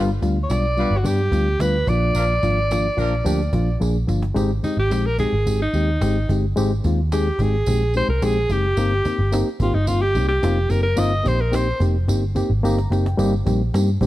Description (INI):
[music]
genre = uptempo 1960s-style soul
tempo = 109 BPM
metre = 4/4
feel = straight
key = Eb major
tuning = A4 = 439 Hz
[part]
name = warm horn section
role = second line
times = 0.0-3.2 s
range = F3 to B4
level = -32 LUFS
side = equal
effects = none
[part]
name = reed electric piano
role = accompaniment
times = 0.0-14.1 s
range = F3 to Bb5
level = -23 LUFS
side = left 2 dB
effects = overdrive
[part]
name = vintage muted picked electric bass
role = bass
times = 0.0-14.1 s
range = F1 to G2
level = -20 LUFS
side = equal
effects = none
[part]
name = cajon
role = drums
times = 0.2-14.1 s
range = none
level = -29 LUFS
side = right 1 dB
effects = none
[part]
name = tambourine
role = percussion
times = 0.2-14.1 s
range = none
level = -40 LUFS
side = right 4 dB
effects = none
[part]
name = bright alto saxophone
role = melody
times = 0.4-11.8 s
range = Eb4 to Eb5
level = -23 LUFS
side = equal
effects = none
[sound]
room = little or no reverb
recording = dark, warm production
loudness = -18 LUFS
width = side -15 dB against mid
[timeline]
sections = 0.0-4.4 A section; 4.4-13.2 B section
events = drum fill 3.8-4.4, 12.6-13.2; alto saxophone solo 4.4-13.2; reed electric piano fill 12.4-13.2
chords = 0.0 G7; 1.9 Bb; 4.4 Abmaj7; 8.8 Eb6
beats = 0.50 1.05 1.60 | 2.15 2.71 3.26 3.81 | 4.36 4.92 5.47 6.02 | 6.57 7.12 7.67 8.23 | 8.78 9.33 9.88 10.43 | 10.98 11.54 12.09 12.64 | 13.19 13.74